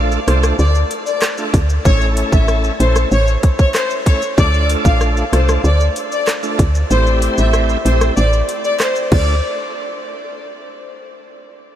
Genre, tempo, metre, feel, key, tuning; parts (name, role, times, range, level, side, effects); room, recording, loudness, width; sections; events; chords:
dancehall; 95 BPM; 4/4; straight; D minor; A4 = 438 Hz
bright tonewheel organ; accompaniment; 0.0-9.4 s; A3 to A4; -23 LUFS; right 1 dB; overdrive, chorus vibrato, slow rotary speaker
woody FM bass; bass; 0.0-9.4 s; A1 to D2; -14 LUFS; equal
island pop drum kit; drums; 0.1-9.3 s; crash cymbal, handclaps, hi-hat, kick drum, rim click, shaker; -19 LUFS; equal; overdrive
rich studio violin section; melody; 0.3-9.4 s; C5 to F5; -20 LUFS; left 1 dB; analog delay
moderate huge ambient reverb, RT60 7.4 s; dreamy mix soaked in reverb; -13 LUFS; side -11 dB against mid
0.0-9.4 A section; 9.4-11.8 B section
kick muted 6.9-9.4
0.0 Dm; 1.9 A; 4.4 Dm; 6.9 Am7; 9.1 Dm; 9.4 N.C.